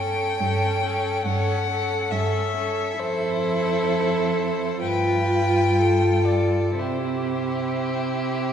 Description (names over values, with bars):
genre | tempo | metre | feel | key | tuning
classical, slow romantic movement for string quartet | 55-72 BPM | 4/4 | rubato | C major | A4 = 441 Hz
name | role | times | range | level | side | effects
warm violin | melody | 0.0-8.5 s | C5 to G5 | -27 LUFS | left 4 dB | none
rich violin | second line | 0.0-8.5 s | G4 to B4 | -27 LUFS | right 2 dB | none
rich viola | accompaniment | 0.0-8.5 s | C#4 to F4 | -26 LUFS | left 1 dB | none
rich cello | bass | 0.0-8.5 s | F2 to C3 | -26 LUFS | right 2 dB | none
room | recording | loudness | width
wet concert hall reverb, RT60 2.1 s | heard from further back in the room | -20 LUFS | side -8 dB against mid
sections
0.0-8.5 A section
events
none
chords
0.0 A7/G; 3.0 Fmaj7; 4.8 G7; 6.8 C